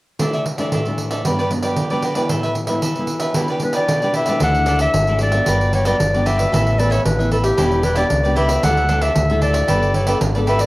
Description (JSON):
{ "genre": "samba and choro", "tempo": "114 BPM", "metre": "4/4", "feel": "straight", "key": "D major", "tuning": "A4 = 436 Hz", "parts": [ { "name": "cavaquinho", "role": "accompaniment", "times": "0.2-10.7 s", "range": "D4 to E5", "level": "-23 LUFS", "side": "right 1 dB", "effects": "cassette tape" }, { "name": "nylon-string guitar", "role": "accompaniment", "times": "0.2-10.7 s", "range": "G2 to A4", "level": "-24 LUFS", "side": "left 1 dB", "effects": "cassette tape" }, { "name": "pandeiro", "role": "percussion", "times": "0.2-10.7 s", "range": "none", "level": "-22 LUFS", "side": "right 2 dB", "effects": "none" }, { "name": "warm clarinet", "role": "melody", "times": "3.6-10.7 s", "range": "G4 to F#5", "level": "-19 LUFS", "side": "left 1 dB", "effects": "cassette tape" }, { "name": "fingered electric bass with an envelope filter", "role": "bass", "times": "4.4-10.7 s", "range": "E1 to D2", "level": "-19 LUFS", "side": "equal", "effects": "none" } ], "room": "light reverb, studio ambience", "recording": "home recording on cassette", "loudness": "-15 LUFS", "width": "side -19 dB against mid", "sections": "0.2-4.4 A section; 4.4-10.7 B section", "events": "none", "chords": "0.2 Dsus2; 1.3 Gmaj7; 2.3 Asus2; 3.4 Em7; 4.4 Dsus2; 5.5 Gmaj7; 6.5 Asus2; 7.6 Em7; 8.6 Dsus2; 9.7 Gadd9" }